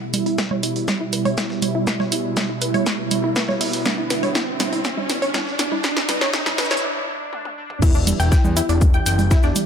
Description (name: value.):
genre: melodic techno.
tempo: 121 BPM.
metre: 4/4.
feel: straight.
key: E dorian.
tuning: A4 = 440 Hz.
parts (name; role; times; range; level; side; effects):
fat analog lead; melody; 0.0-9.2 s; D4 to E4; -30 LUFS; equal; lush chorus, cassette tape, sidechain pumping, tape echo.
warm analog pad; sustained chords; 0.0-9.7 s; B2 to G4; -26 LUFS; right 2 dB; chorus, sidechain pumping.
riser; sound effects; 1.5-6.8 s; none; -28 LUFS; right 1 dB; none.
breakbeat sampler-style drum kit; drums; 0.1-9.7 s; hi-hat, shaker, snare drum; -33 LUFS; left 1 dB; sidechain pumping on perc, high-pass filter on perc, sidechain pumping on hats, high-pass filter on hats, high-pass filter on snare.
punchy analog drum machine; drums; 0.1-9.7 s; congas, crash cymbal, hi-hat, snare drum, toms; -23 LUFS; right 2 dB; none.
wide unison pluck; arpeggios; 0.3-9.5 s; D4 to G6; -26 LUFS; left 1 dB; sidechain pumping, tape echo.
electronic kick drum; drums; 0.4-9.4 s; none; -18 LUFS; left 1 dB; high-pass filter on kick.
fat analog bass; bass; 7.8-9.5 s; E1 to E2; -20 LUFS; left 1 dB; sidechain pumping.
cabasa; percussion; 7.8-9.7 s; none; -31 LUFS; left 5 dB; none.
room: light reverb.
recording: high-pass filter.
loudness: -18 LUFS.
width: side -7 dB against mid.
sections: 0.0-7.8 A section; 7.8-9.7 B section.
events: build-up 0.0-7.8; drum fill 0.0-6.8, 7.3-7.8; filter sweep on synth pluck 0.0-7.8; filter sweep on analog synth lead 0.0-7.8; filter sweep 0.0-7.8; riser 1.5-6.8; break 6.8-7.8; drop 7.8-9.7.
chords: 0.0 Em.